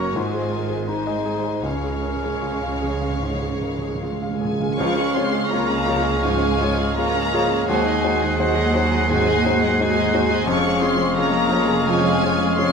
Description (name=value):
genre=classical, romantic movement for piano and orchestra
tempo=75-90 BPM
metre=4/4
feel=rubato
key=Db major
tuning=A4 = 443 Hz
part: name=clear grand piano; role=melody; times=0.0-12.7 s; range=Db2 to F5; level=-25 LUFS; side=left 2 dB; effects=none
part: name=warm symphonic violin section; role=melody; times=0.0-12.7 s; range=F5 to Db6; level=-28 LUFS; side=left 4 dB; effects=none
part: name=warm clarinet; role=second line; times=0.0-12.7 s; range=Db4 to Ab4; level=-31 LUFS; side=equal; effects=none
part: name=warm symphonic violin section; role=second line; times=0.0-12.7 s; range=F4 to F5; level=-29 LUFS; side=equal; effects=none
part: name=warm symphonic viola section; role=accompaniment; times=0.0-12.7 s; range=F3 to Gb4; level=-28 LUFS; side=right 4 dB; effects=none
part: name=warm symphonic cello section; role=bass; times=0.0-12.7 s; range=Db2 to Db3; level=-29 LUFS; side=right 2 dB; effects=none
part: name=warm symphonic double bass section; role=bass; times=0.0-12.7 s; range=F1 to Eb2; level=-29 LUFS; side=right 4 dB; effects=none
part: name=timpani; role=percussion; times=0.2-5.8 s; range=Ab2 to Db3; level=-30 LUFS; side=right 5 dB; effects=none
part: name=mellow French horn section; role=sustained chords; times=4.4-12.7 s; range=Gb3 to Db4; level=-26 LUFS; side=left 4 dB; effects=none
part: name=mellow hollow concert flute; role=second line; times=4.8-12.7 s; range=Db6 to C7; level=-28 LUFS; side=equal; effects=none
part: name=warm oboe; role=second line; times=4.8-12.7 s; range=F5 to Gb5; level=-30 LUFS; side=right 2 dB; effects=none
part: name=dark bassoon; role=accompaniment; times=4.8-12.7 s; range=Ab3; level=-29 LUFS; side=right 2 dB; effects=none
part: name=dark trombone section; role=sustained chords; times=4.8-12.1 s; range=F3 to Db4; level=-32 LUFS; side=right 4 dB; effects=none
room=moderate scoring stage reverb, RT60 1.5 s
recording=minimal, uncompressed stereo recording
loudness=-18 LUFS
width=side -6 dB against mid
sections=0.0-4.8 A section; 4.8-12.7 B section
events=timpani fill 1.6-4.8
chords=0.2 Ab; 1.6 Db; 7.7 Ab7/Eb; 10.5 Db/F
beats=0.17 0.88 | 1.64 2.43 3.22 4.01 | 4.78 5.51 6.23 6.97 | 7.68 8.38 9.09 9.79 | 10.47 11.16 11.88 12.59